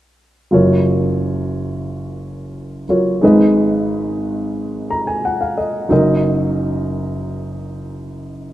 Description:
folk; 89 BPM; 4/4; straight; F# major; A4 = 441 Hz
warm upright piano; melody; 0.5-8.5 s; F#1 to A#5; -16 LUFS; equal
moderate lush hall reverb, RT60 2.6 s; rough home demo mix, lossy compression artefacts, faint mains hum; -15 LUFS; side -14 dB against mid
0.5-8.5 A section
upright piano fill 4.6-5.9
0.5 F#maj7; 3.2 G#m; 5.9 D#m/F#
| 0.52 1.20 1.87 2.55 | 3.22 3.89 4.57 5.24 | 5.90 6.57 7.25 7.92

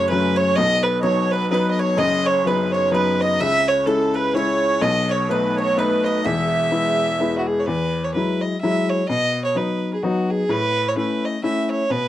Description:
celtic folk, Celtic waltz; 127 BPM; 3/4; swing 57% on 8ths; E major; A4 = 438 Hz
rich fiddle; melody; 0.0-12.1 s; F#4 to E5; -21 LUFS; right 2 dB
accordion; second line; 0.0-7.4 s; A4 to E5; -26 LUFS; equal
mandolin; second line; 0.0-7.4 s; A4 to E5; -28 LUFS; right 7 dB
bright upright piano; accompaniment; 0.0-12.1 s; E1 to E4; -21 LUFS; left 3 dB
moderate small room reverb, RT60 0.5 s; dry, close 1970s-style studio recording; -18 LUFS; side -13 dB against mid
0.0-7.7 A section; 7.7-12.1 B section
0.0 F#m; 0.6 B; 3.4 C#m; 4.8 B7; 6.2 E; 7.7 Eadd9; 9.1 B; 10.5 A
0.10 | 0.57 1.05 1.52 | 1.99 2.46 2.94 | 3.41 3.88 4.36 | 4.83 5.30 5.77 | 6.25 6.72 7.19 | 7.66 8.13 8.61 | 9.08 9.55 10.02 | 10.49 10.96 11.43 | 11.90

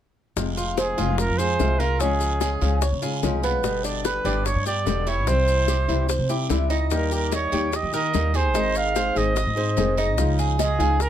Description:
latin, Cuban son and guajira; 147 BPM; 4/4; straight; F minor; A4 = 443 Hz
flamenco guitar; accompaniment; 0.4-11.0 s; B2 to Ab4; -28 LUFS; left 6 dB
upright bass; bass; 0.4-11.1 s; E1 to Eb3; -24 LUFS; equal
bongos; percussion; 0.4-11.1 s; -30 LUFS; left 10 dB
guiro; percussion; 0.4-11.1 s; -37 LUFS; right 6 dB
maracas; percussion; 0.4-11.1 s; -36 LUFS; left 7 dB
Cuban tres; arpeggios; 0.6-11.1 s; B3 to Eb5; -27 LUFS; right 3 dB
breathy trumpet; melody; 0.8-11.1 s; Ab4 to F5; -26 LUFS; right 3 dB
light reverb; close, detailed microphones; -20 LUFS; side -10 dB against mid
0.4-11.1 A section
0.4 Fm; 2.0 Db; 3.6 G; 5.3 C; 6.9 Eb; 8.5 Ab; 10.2 Dbadd9
| 0.37 0.78 1.19 1.59 | 2.00 2.41 2.82 3.23 | 3.64 4.05 4.46 4.87 | 5.28 5.68 6.09 6.50 | 6.91 7.32 7.73 8.14 | 8.55 8.96 9.37 9.77 | 10.18 10.59 11.00

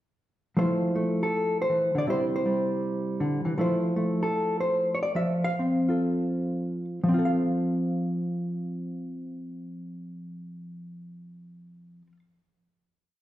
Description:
solo jazz; 112-159 BPM; 4/4; swing 66% on 8ths; F major; A4 = 440 Hz
hollow-body jazz guitar; solo; 0.6-12.2 s; C3 to F5; -25 LUFS; equal
wet large studio reverb, RT60 1.4 s; band playing live in one room; -24 LUFS; side -14 dB against mid
0.6-7.0 A section; 7.0-11.3 final chord
slowing down 3.6-7.0
0.6 Fmaj7; 2.1 C; 3.6 Fmaj7; 7.0 F
| 0.56 0.93 1.31 1.69 | 2.06 2.44 2.82 3.19 | 3.57 3.95 4.33 4.73 | 5.14 5.57 6.02 6.50 | 7.01 7.55 8.09 8.62 | 9.16 9.70 10.24 10.77

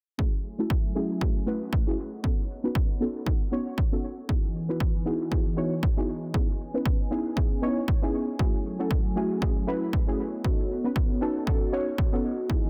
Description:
deep house; 117 BPM; 4/4; swing 57% on 16ths; F# dorian; A4 = 440 Hz
hollow soft pad; sustained chords; 0.2-12.7 s; E3 to G#5; -38 LUFS; equal; chorus, sidechain pumping
deep mellow chord stab; stabs; 0.2-12.7 s; A3 to C#5; -32 LUFS; equal; chorus, cassette tape, sidechain pumping, tape echo
electronic kick drum; drums; 0.2-12.6 s; -28 LUFS; equal
light reverb; dense, heavily limited modern master; -27 LUFS; mono
0.2-12.7 A section
filter sweep on synth stab 0.2-12.7; filter sweep on analog synth pad 0.2-12.7
0.2 F#m9; 2.0 B9; 4.3 Emaj9; 6.3 C#m9; 8.4 F#m9; 10.2 B9
| 0.19 0.70 1.21 1.73 | 2.24 2.75 3.27 3.78 | 4.29 4.80 5.32 5.83 | 6.34 6.86 7.37 7.88 | 8.39 8.91 9.42 9.93 | 10.44 10.96 11.47 11.98 | 12.50

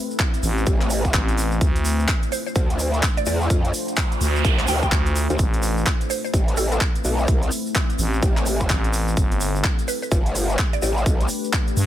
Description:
bass house; 127 BPM; 4/4; swing 62% on 16ths; A minor; A4 = 440 Hz
deep dark ambient pad; sustained chords; 0.0-11.9 s; A3 to C5; -30 LUFS; left 3 dB; chorus, built-in reverb, sidechain pumping
tube shaker; percussion; 0.1-11.9 s; -33 LUFS; right 1 dB
electronic kick drum; drums; 0.2-11.6 s; -21 LUFS; equal
garage drum kit; drums; 0.2-11.9 s; handclaps, hi-hat; -27 LUFS; equal
growling FM bass; bass; 0.4-11.9 s; G1 to G2; -21 LUFS; equal; sidechain pumping
growl bass; bass; 0.7-11.3 s; G1 to F2; -22 LUFS; equal; chorus, overdrive, sidechain pumping
mallet-like synth pluck; melody; 2.3-6.8, 9.9-10.9 s; A4 to G5; -29 LUFS; right 3 dB; wide subtle chorus, ping-pong delay
noise sweep; sound effects; 3.8-5.4 s; -29 LUFS; right 6 dB
digital ambience; -18 LUFS; side -12 dB against mid
0.0-11.9 A section
noise sweep 3.8-5.4
0.0 Amadd9; 1.6 Dm7; 5.4 Amadd9; 9.2 Gadd9
0.19 0.67 1.14 | 1.61 2.08 2.56 3.03 | 3.50 3.97 4.45 4.92 | 5.39 5.86 6.33 6.81 | 7.28 7.75 8.22 8.70 | 9.17 9.64 10.12 10.59 | 11.06 11.53

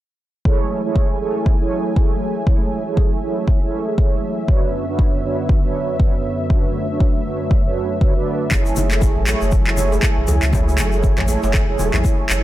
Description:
afro house; 119 BPM; 4/4; swing 58% on 16ths; F# minor; A4 = 439 Hz
warm analog pad; sustained chords; 0.5-12.4 s; F#2 to G#5; -26 LUFS; left 2 dB; chorus, sidechain pumping
mellow synth brass; stabs; 0.5-12.4 s; D4 to D5; -23 LUFS; right 4 dB; chorus, cassette tape, sidechain pumping, dub echo
electronic kick drum; drums; 0.5-12.2 s; -17 LUFS; equal
warm sub bass; bass; 8.5-12.4 s; E1 to C#2; -20 LUFS; equal; sidechain pumping
electronic handclaps; drums; 8.5-12.4 s; -24 LUFS; equal
congas; percussion; 8.5-12.0 s; -26 LUFS; left 2 dB
tube shaker; percussion; 8.5-12.4 s; -32 LUFS; left 6 dB
djembe; percussion; 9.3-12.0 s; -30 LUFS; right 3 dB
small room ambience; -16 LUFS; side -14 dB against mid
0.5-12.4 A section
0.5 F#m7; 4.5 Bmadd9/F#; 8.5 F#m7
| 0.45 0.95 1.46 1.96 | 2.47 2.97 3.48 3.98 | 4.49 4.99 5.49 6.00 | 6.50 7.01 7.51 8.01 | 8.52 9.02 9.53 10.03 | 10.54 11.04 11.54 12.05

